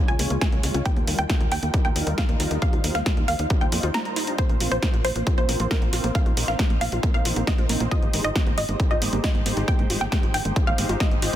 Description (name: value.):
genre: uplifting trance.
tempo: 136 BPM.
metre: 4/4.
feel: straight.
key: unclear.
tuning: A4 = 440 Hz.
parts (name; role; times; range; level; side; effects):
filtered supersaw swell; sustained chords; 0.0-11.4 s; G3 to Db5; -31 LUFS; equal; phaser, sidechain pumping, low-pass filter.
analog pluck; arpeggios; 0.0-11.4 s; Bb3 to Bb4; -33 LUFS; right 1 dB; chorus, sidechain pumping, ping-pong delay.
wide unison pluck; melody; 0.1-11.4 s; Bb4 to Bb5; -29 LUFS; equal; sidechain pumping, ping-pong delay.
tight sequencer bass; bass; 0.1-11.4 s; Ab1 to F2; -27 LUFS; equal; sidechain pumping.
punchy analog drum machine; drums; 0.1-11.4 s; hi-hat, snare drum; -29 LUFS; equal; sidechain pumping on hats.
electronic kick drum; drums; 0.4-11.1 s; none; -22 LUFS; equal; none.
room: light reverb.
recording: dense, heavily limited modern master.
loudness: -20 LUFS.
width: side -12 dB against mid.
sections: 0.0-11.4 A section.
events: filter sweep on supersaw synth 0.0-11.4; break 3.9-4.4.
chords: 0.0 Db; 0.9 Ebadd9; 4.4 Bbsus2; 7.9 Abmaj7.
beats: 0.41 | 0.86 1.30 1.74 2.18 | 2.62 3.06 3.50 3.94 | 4.38 4.83 5.27 5.71 | 6.15 6.59 7.03 7.47 | 7.91 8.36 8.80 9.24 | 9.68 10.12 10.56 11.00.